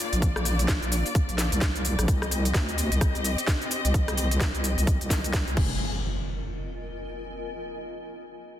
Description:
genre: bass house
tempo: 129 BPM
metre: 4/4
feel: swing 60% on 16ths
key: F dorian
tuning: A4 = 440 Hz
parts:
  - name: dark chamber string section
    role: sustained chords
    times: 0.0-5.8 s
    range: F3 to Eb5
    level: -32 LUFS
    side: left 3 dB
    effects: vintage 12-bit sampler grit, sidechain pumping
  - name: granular cloud pad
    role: texture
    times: 0.0-7.6 s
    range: C4 to Ab5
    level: -41 LUFS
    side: left 1 dB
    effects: built-in reverb, sidechain pumping
  - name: wobble bass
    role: bass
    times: 0.1-5.8 s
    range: F1 to D2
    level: -26 LUFS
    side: equal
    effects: chorus, tube saturation, sidechain pumping
  - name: garage drum kit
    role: drums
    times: 0.1-5.7 s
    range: cabasa, crash cymbal, hi-hat, rim click, snare drum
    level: -30 LUFS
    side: equal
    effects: none
  - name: electronic kick drum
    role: drums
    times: 0.2-5.7 s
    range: none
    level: -26 LUFS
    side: equal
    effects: none
  - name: impact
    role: sound effects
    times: 5.6-7.4 s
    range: none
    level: -33 LUFS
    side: equal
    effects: none
room: little or no reverb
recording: dense, heavily limited modern master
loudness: -23 LUFS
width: side -12 dB against mid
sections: 0.0-5.8 A section; 5.8-7.7 B section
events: none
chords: 0.0 Bb; 2.1 Cm; 5.6 Fm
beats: | 0.22 0.69 1.15 1.62 | 2.08 2.55 3.01 3.48 | 3.94 4.41 4.87 5.34 | 5.80 6.27 6.73 7.20

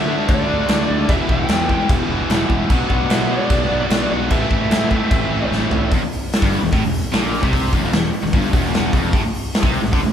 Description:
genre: hard rock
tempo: 149 BPM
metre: 4/4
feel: straight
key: E minor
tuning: A4 = 439 Hz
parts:
  - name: lead guitar through a small cranked amp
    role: melody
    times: 0.0-5.5 s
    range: D5 to G5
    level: -24 LUFS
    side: left 1 dB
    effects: overdrive
  - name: overdriven electric guitar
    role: riff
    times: 0.0-10.1 s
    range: E2 to D4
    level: -25 LUFS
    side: left 6 dB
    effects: none
  - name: sludgy distorted guitar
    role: riff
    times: 0.0-10.1 s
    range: E2 to D4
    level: -27 LUFS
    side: right 6 dB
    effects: overdrive
  - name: tight distorted guitar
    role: riff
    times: 0.0-10.1 s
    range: E2 to G4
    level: -25 LUFS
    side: equal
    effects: distortion
  - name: fuzz fingered electric bass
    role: bass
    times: 0.0-10.1 s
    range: E1 to D3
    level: -23 LUFS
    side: equal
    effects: overdrive
  - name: big rock drum kit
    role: drums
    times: 0.3-10.0 s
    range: crash cymbal, hi-hat, kick drum, snare drum, toms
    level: -18 LUFS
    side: equal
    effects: none
room: moderate large studio reverb, RT60 0.8 s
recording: band playing live in one room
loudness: -15 LUFS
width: side -9 dB against mid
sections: 0.0-5.9 A section; 5.9-10.1 B section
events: drum fill 5.5-5.9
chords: 0.0 D; 1.1 Em; 2.7 Bm; 4.3 Am; 5.9 Em; 9.1 Csus2/A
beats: 0.29 0.69 | 1.09 1.49 1.90 2.30 | 2.70 3.10 3.50 3.91 | 4.31 4.71 5.11 5.52 | 5.92 6.32 6.72 7.12 | 7.53 7.93 8.33 8.73 | 9.13 9.53 9.94

